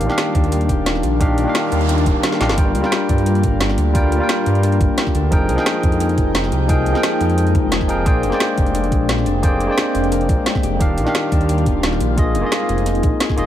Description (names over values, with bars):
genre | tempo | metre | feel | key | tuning
liquid drum and bass | 175 BPM | 4/4 | straight | unclear | A4 = 441 Hz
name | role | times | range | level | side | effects
barky tine electric piano | accompaniment | 0.0-13.5 s | Eb3 to G5 | -21 LUFS | equal | digital delay
airy breathy pad | sustained chords | 0.0-13.5 s | G3 to G5 | -25 LUFS | equal | chorus, phaser, sidechain pumping
concert harp | arpeggios | 0.0-13.5 s | D4 to Eb5 | -26 LUFS | left 7 dB | digital delay
dark detuned saw bass | bass | 0.0-13.5 s | Eb1 to G2 | -19 LUFS | equal | tube saturation
garage drum kit | drums | 0.0-13.4 s | hi-hat, snare drum | -23 LUFS | equal | overdrive, small room ambience
electronic kick drum | drums | 0.3-13.4 s | none | -18 LUFS | equal | overdrive, small room ambience
noise sweep | sound effects | 1.5-2.6 s | none | -30 LUFS | right 5 dB | none
room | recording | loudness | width
light reverb | none | -15 LUFS | side -11 dB against mid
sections
0.0-13.5 A section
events
noise sweep 1.5-2.6; kick drops out 2.2-2.6; drum fill 2.3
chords
0.0 Ebmaj9; 2.6 Gm7; 5.3 Fm11; 10.8 Ebmaj9; 12.2 Bb7sus4